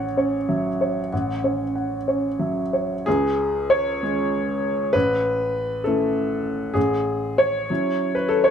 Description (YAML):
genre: neoclassical minimalist piano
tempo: 60-67 BPM (dotted quarters)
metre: 6/8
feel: rubato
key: F# minor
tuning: A4 = 440 Hz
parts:
  - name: warm upright piano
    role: solo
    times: 0.0-8.5 s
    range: A1 to F#5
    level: -20 LUFS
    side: equal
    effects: none
room: wet spring reverb, RT60 1.7 s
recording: none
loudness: -20 LUFS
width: side -8 dB against mid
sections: 0.0-3.1 A section; 3.1-8.5 B section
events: none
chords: 0.0 F#m7/A; 3.1 C#; 4.9 A; 6.8 F#m7/A